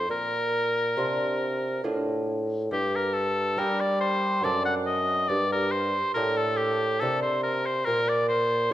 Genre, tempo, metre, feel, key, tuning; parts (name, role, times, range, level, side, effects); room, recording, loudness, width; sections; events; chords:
classical, baroque-style sonata movement with continuo; 70 BPM; 3/4; straight; G minor; A4 = 440 Hz
clear oboe; melody; 0.0-8.7 s; G4 to F#5; -26 LUFS; left 1 dB
lute; accompaniment; 0.0-8.7 s; F#2 to A4; -33 LUFS; right 1 dB
mellow bassoon; bass; 0.0-8.7 s; F#2 to G3; -28 LUFS; right 1 dB
wet recital hall reverb, RT60 1.6 s; -24 LUFS; side -13 dB against mid
0.0-2.7 A section; 2.7-8.7 A section
0.1 Bb; 2.7 Gm; 4.4 D7/F#; 5.3 Gm; 7.9 Bb